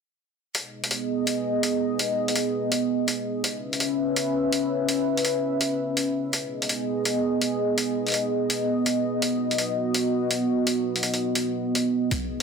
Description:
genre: half-time drum and bass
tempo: 166 BPM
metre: 4/4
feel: swing 60% on 16ths, half-time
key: G# minor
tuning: A4 = 440 Hz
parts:
  - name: dark analog pad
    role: sustained chords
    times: 0.8-12.4 s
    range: B3 to E5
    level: -24 LUFS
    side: equal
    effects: chorus, sidechain pumping
  - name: electronic hi-hat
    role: drums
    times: 0.5-12.4 s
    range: none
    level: -26 LUFS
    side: left 1 dB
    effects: small room ambience
  - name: electronic kick drum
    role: drums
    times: 12.1-12.2 s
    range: none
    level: -30 LUFS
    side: left 1 dB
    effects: small room ambience
room: moderate digital room reverb, RT60 1.3 s, digital ambience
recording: dense, heavily limited modern master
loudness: -23 LUFS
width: side -5 dB against mid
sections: 0.5-12.4 A section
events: none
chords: 0.5 G#m; 3.4 C#m7; 6.3 G#m; 9.2 B

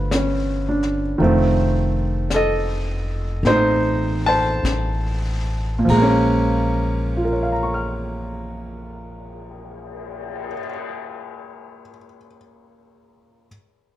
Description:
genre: jazz ballad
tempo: 47-56 BPM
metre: 4/4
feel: swing 68% on 8ths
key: Bb minor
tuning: A4 = 436 Hz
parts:
  - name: warm baby grand piano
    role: accompaniment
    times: 0.0-13.5 s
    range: Bb2 to F6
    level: -20 LUFS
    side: right 1 dB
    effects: none
  - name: upright bass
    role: bass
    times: 0.0-10.5 s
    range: F1 to Bb1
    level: -23 LUFS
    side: equal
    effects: none
  - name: jazz brush drum kit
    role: drums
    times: 0.1-10.7 s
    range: brushed snare drum, cymbal swell, hi-hat, kick drum, ride cymbal, snare drum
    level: -32 LUFS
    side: left 3 dB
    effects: none
room: light reverb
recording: none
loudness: -18 LUFS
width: side -13 dB against mid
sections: 0.0-1.2 A section; 1.2-5.9 B section; 5.9-11.0 C section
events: slowing down 0.0-5.9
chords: 0.0 G7; 1.2 F7; 5.9 Bbm7

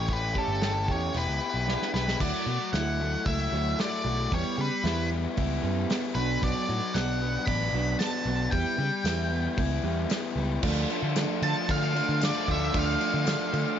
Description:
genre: indie rock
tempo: 114 BPM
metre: 4/4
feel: straight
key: unclear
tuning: A4 = 443 Hz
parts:
  - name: octave-fuzz lead guitar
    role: melody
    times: 0.0-13.8 s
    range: A4 to B5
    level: -31 LUFS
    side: equal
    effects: distortion
  - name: crunchy overdriven guitar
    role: riff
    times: 0.0-13.8 s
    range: E3 to G4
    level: -32 LUFS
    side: left 8 dB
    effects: none
  - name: picked electric bass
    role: bass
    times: 0.0-13.6 s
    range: E1 to D3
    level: -30 LUFS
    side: equal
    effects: none
  - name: loose indie drum kit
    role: drums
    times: 0.1-13.7 s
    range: crash cymbal, hi-hat, kick drum, snare drum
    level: -33 LUFS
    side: equal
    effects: none
  - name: electric guitar through a small old amp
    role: riff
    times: 0.4-13.8 s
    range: E3 to G4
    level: -34 LUFS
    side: right 10 dB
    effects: analog chorus, tape echo
  - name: tambourine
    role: percussion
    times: 7.0-13.4 s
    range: none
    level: -42 LUFS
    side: left 17 dB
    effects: none
  - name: glockenspiel with hard plastic mallets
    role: second line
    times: 11.4-13.8 s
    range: D6 to A6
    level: -36 LUFS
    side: right 12 dB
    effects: none
room: small room ambience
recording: nothing above 7.5 kHz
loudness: -25 LUFS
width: side -9 dB against mid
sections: 0.0-2.2 A section; 2.2-10.6 B section; 10.6-13.8 C section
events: drum fill 1.7-2.2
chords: 0.0 A7; 1.2 Em7; 2.2 Dadd9; 4.3 Em; 6.2 Bm; 8.5 Em; 10.6 Dm

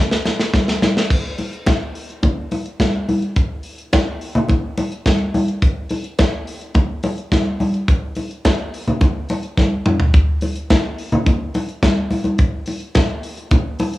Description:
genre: disco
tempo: 106 BPM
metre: 4/4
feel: straight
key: none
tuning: none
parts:
  - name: modern studio drum kit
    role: drums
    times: 0.1-14.0 s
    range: crash cymbal, hi-hat, kick drum, snare drum, toms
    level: -17 LUFS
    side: equal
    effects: cassette tape
  - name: congas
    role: percussion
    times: 0.3-13.9 s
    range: none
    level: -20 LUFS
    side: left 1 dB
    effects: none
room: light reverb, small room ambience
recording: home recording on cassette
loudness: -16 LUFS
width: side -17 dB against mid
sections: 0.0-1.1 A section; 1.1-10.1 B section; 10.1-14.0 C section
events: drum fill 0.0-1.1, 9.6-10.1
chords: none

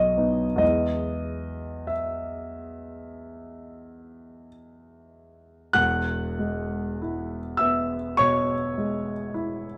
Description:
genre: classical, romantic nocturne for solo piano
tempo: 45-56 BPM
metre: 4/4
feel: rubato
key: E major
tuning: A4 = 440 Hz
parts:
  - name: warm concert grand piano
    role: solo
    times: 0.0-9.8 s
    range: E1 to F#6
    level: -26 LUFS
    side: equal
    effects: none
room: wet large studio reverb, RT60 0.9 s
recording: heard from further back in the room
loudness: -26 LUFS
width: mono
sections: 0.0-5.8 A section; 5.8-9.8 A section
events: none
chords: 0.0 B; 0.6 E

